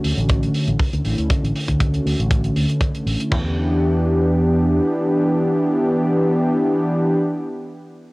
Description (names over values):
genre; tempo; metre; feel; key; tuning
nu-disco, nu disco; 119 BPM; 4/4; swing 54% on 16ths; E dorian; A4 = 441 Hz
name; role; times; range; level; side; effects
warm analog pad; accompaniment; 0.0-7.2 s; D3 to B4; -19 LUFS; equal; chorus, sidechain pumping, tape echo
fingered electric bass with an envelope filter; bass; 0.0-4.8 s; A1 to E2; -21 LUFS; equal; sidechain pumping
hi-hat; drums; 0.0-3.3 s; none; -31 LUFS; right 2 dB; cassette tape
tight funk drum kit; drums; 0.3-3.4 s; crash cymbal, kick drum, toms; -20 LUFS; equal; cassette tape
room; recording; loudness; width
wet booth ambience, RT60 0.2 s; home recording on cassette; -16 LUFS; side -23 dB against mid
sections
0.0-3.3 A section; 3.3-7.4 B section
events
none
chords
0.0 Dmaj7; 3.3 Em7